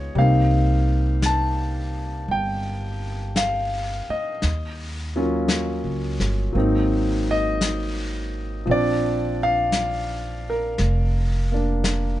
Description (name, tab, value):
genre	jazz ballad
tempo	56 BPM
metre	4/4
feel	swing 68% on 8ths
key	unclear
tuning	A4 = 440 Hz
part	clear grand piano	accompaniment	0.0-12.2 s	F3 to A5	-23 LUFS	equal	none
part	upright bass	bass	0.0-12.2 s	F1 to Eb2	-24 LUFS	equal	none
part	vintage brush drum kit	drums	0.1-12.2 s	brushed snare drum, hi-hat, snare drum	-30 LUFS	left 2 dB	none
room	little or no reverb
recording	nothing above 10.5 kHz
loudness	-20 LUFS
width	side -14 dB against mid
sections	0.0-12.2 A section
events	none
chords	0.2 Cm7; 4.4 Ebm7; 6.5 Ab9; 8.7 Bb